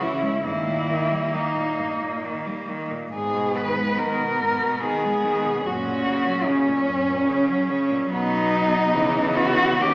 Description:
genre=classical, lyrical piece for cello ensemble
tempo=65-75 BPM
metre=3/4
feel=rubato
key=G# minor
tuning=A4 = 440 Hz
part: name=warm cello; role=melody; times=0.0-9.9 s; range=C#4 to B4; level=-22 LUFS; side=left 1 dB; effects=none
part: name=rich cello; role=second line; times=0.0-9.9 s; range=A#3 to C#4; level=-26 LUFS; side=right 1 dB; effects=none
part: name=rich cello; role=accompaniment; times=0.0-9.9 s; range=F#2 to G#3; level=-28 LUFS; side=equal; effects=none
part: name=warm cello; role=bass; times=0.0-9.9 s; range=D#2 to D#3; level=-30 LUFS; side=equal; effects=none
room=wet recital hall reverb, RT60 1.5 s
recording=heard from further back in the room, small speaker sound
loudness=-20 LUFS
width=side -23 dB against mid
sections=0.0-9.9 A section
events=none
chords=0.4 D#/G; 3.1 G#m; 5.7 F#; 8.1 B; 8.9 C#m7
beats=| 0.44 1.33 2.23 | 3.13 3.99 4.84 | 5.66 6.47 7.30 | 8.11 8.94 9.80

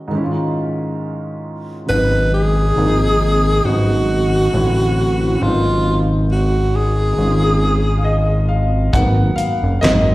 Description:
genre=R&B, neo-soul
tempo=68 BPM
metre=4/4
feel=swing 54% on 16ths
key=G# dorian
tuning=A4 = 442 Hz
part: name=warm concert grand piano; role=accompaniment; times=0.0-10.1 s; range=G#2 to F#5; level=-21 LUFS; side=equal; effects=slapback echo
part: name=breathy tenor saxophone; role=melody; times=1.9-8.5 s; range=E#4 to B4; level=-18 LUFS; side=equal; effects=slapback echo
part: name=fat analog bass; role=bass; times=1.9-10.1 s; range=F#1 to A1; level=-16 LUFS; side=equal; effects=none
part: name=cloth-damped thuddy drum kit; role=drums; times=8.9-10.1 s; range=handclaps, hi-hat, kick drum, snare drum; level=-18 LUFS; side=equal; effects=none
room=small room ambience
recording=live gig heard through the venue's PA, recital hall reverb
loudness=-14 LUFS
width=side -18 dB against mid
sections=0.0-8.9 A section; 8.9-10.1 B section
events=grand piano solo 8.9-10.1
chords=0.1 C#add9/G#; 1.9 G#m7; 2.8 G#; 3.6 C#9sus4/G#; 4.5 Am7; 5.4 G#m7; 7.2 C#add9/G#; 8.9 G#m9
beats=0.12 1.00 | 1.88 2.76 3.65 4.53 | 5.41 6.29 7.17 8.06 | 8.94 9.82

